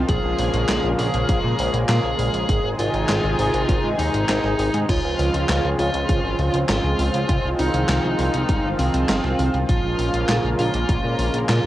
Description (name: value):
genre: synthwave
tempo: 100 BPM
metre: 4/4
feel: straight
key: unclear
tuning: A4 = 442 Hz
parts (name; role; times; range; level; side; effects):
- lush unison pad; sustained chords; 0.0-11.7 s; C3 to Ab4; -24 LUFS; equal; chorus, sidechain pumping, cassette tape, shimmer reverb
- chorused synth bass; bass; 0.0-11.7 s; G1 to Bb2; -23 LUFS; equal; none
- fuzz lead guitar; melody; 0.1-11.7 s; C4 to Ab4; -25 LUFS; right 1 dB; distortion, cassette tape, tape echo, shimmer reverb
- electronic kick drum; drums; 0.1-11.0 s; none; -22 LUFS; equal; none
- gated 80s digital drum machine; drums; 0.1-11.6 s; crash cymbal, handclaps, hi-hat, snare drum; -27 LUFS; equal; gated reverb, gated reverb snare
room: light reverb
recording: home recording on cassette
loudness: -18 LUFS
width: side -14 dB against mid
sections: 0.0-11.7 A section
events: none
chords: 0.1 Bbm7; 2.5 Ab; 4.9 Dbmaj7; 7.3 Fm7/C; 9.7 Bbm7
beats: | 0.09 0.69 1.29 1.89 | 2.49 3.09 3.69 4.29 | 4.89 5.49 6.09 6.69 | 7.29 7.89 8.49 9.09 | 9.69 10.29 10.89 11.49